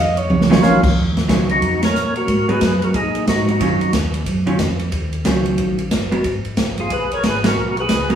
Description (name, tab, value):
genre	soul jazz organ trio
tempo	182 BPM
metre	4/4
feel	swing 63% on 8ths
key	Eb minor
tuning	A4 = 442 Hz
part	breathy alto saxophone	melody	0.0-0.6 s	Db5 to Eb5	-20 LUFS	equal	none
part	mellow tonewheel organ	bass	0.0-8.2 s	Gb1 to Bb2	-22 LUFS	equal	chorus vibrato, slow rotary speaker
part	swinging big-band drum kit	drums	0.2-8.2 s	crash cymbal, hi-hat, kick drum, ride cymbal, snare drum, toms	-19 LUFS	right 1 dB	none
part	archtop guitar, miked and amplified	accompaniment	0.5-8.2 s	Eb3 to Bb4	-21 LUFS	right 1 dB	none
part	percussive tonewheel organ	melody	0.6-3.9, 6.8-8.2 s	Eb3 to Db5	-19 LUFS	left 1 dB	slow rotary speaker, chorus vibrato
room	wet studio reverb, RT60 0.9 s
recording	heard from further back in the room, small room reverb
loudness	-15 LUFS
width	side -9 dB against mid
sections	1.0-8.2 A section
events	drum fill 0.3-0.6; band accent 1.8, 7.4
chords	0.0 Ebm9; 2.3 Abm9; 3.6 Ebm9